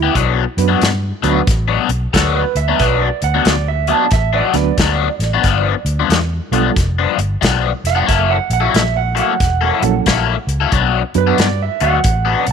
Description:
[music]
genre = electric blues shuffle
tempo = 91 BPM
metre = 4/4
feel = swing 64% on 8ths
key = B minor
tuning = A4 = 440 Hz
[part]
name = electric guitar through a small old amp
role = second line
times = 0.0-12.5 s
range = E4 to A5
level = -20 LUFS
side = right 14 dB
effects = none
[part]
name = crunchy overdriven guitar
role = riff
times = 0.0-12.5 s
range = G2 to A4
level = -18 LUFS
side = left 14 dB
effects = phaser
[part]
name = vintage muted fingered electric bass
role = bass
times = 0.0-12.5 s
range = E1 to G2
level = -18 LUFS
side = equal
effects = none
[part]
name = natural country drum kit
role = drums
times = 0.2-12.5 s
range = hi-hat, kick drum, snare drum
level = -18 LUFS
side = left 1 dB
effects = none
[part]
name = barky reed electric piano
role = accompaniment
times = 0.6-11.4 s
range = F#3 to B4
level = -20 LUFS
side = right 16 dB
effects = overdrive, fast tremolo
[sound]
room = studio reverb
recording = 1960s-style stereo with parts hard left and right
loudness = -13 LUFS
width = side -6 dB against mid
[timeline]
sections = 0.0-12.5 A section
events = clean electric guitar solo 0.0-12.5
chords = 0.2 Bm; 5.4 G7; 8.1 F#7#9; 10.7 Bm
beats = | 0.16 0.82 1.48 2.14 | 2.80 3.46 4.12 4.78 | 5.45 6.11 6.77 7.43 | 8.09 8.75 9.41 10.07 | 10.73 11.39 12.05

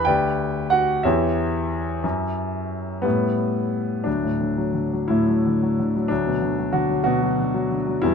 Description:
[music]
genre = classical, lyrical solo piano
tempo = 60 BPM (dotted quarters)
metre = 6/8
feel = uneven beats, rubato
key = D major from 4.1 s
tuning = A4 = 441 Hz
[part]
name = warm concert grand piano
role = solo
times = 0.0-8.1 s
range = D2 to G5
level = -20 LUFS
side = left 1 dB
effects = none
[sound]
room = moderate studio ambience, RT60 0.5 s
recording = minimal, uncompressed stereo recording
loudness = -20 LUFS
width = side -6 dB against mid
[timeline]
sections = 0.0-4.1 A section; 4.1-8.1 B section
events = none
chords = 0.1 G/D; 1.0 C#dim/E; 2.0 Em69/F#; 3.0 A7; 4.1 D; 6.1 Bm/D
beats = | 0.07 1.05 | 2.04 3.05 | 4.07 5.10 | 6.10 7.06 | 8.03

